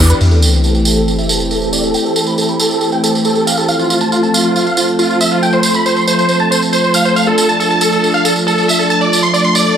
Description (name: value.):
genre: uplifting trance.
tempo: 138 BPM.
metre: 4/4.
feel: straight.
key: A minor.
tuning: A4 = 440 Hz.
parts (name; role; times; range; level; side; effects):
big supersaw lead; melody; 0.0-9.8 s; F4 to C6; -14 LUFS; right 1 dB; low-pass filter, tape echo.
lush unison pad; sustained chords; 0.0-9.7 s; E3 to A4; -15 LUFS; equal; chorus.
tambourine; percussion; 0.1-9.8 s; none; -18 LUFS; right 3 dB; none.
sub drop; sound effects; 0.2-1.9 s; none; -14 LUFS; equal; none.
room: light reverb.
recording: none.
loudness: -10 LUFS.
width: side -8 dB against mid.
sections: 0.2-9.8 A section.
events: impact 0.2-1.9; filter sweep on supersaw synth 0.2-9.8.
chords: 0.2 Am7; 3.7 F; 7.2 Dm.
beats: | 0.21 0.64 1.08 1.51 | 1.95 2.38 2.81 3.25 | 3.68 4.12 4.55 4.99 | 5.42 5.86 6.29 6.73 | 7.16 7.60 8.03 8.47 | 8.90 9.34.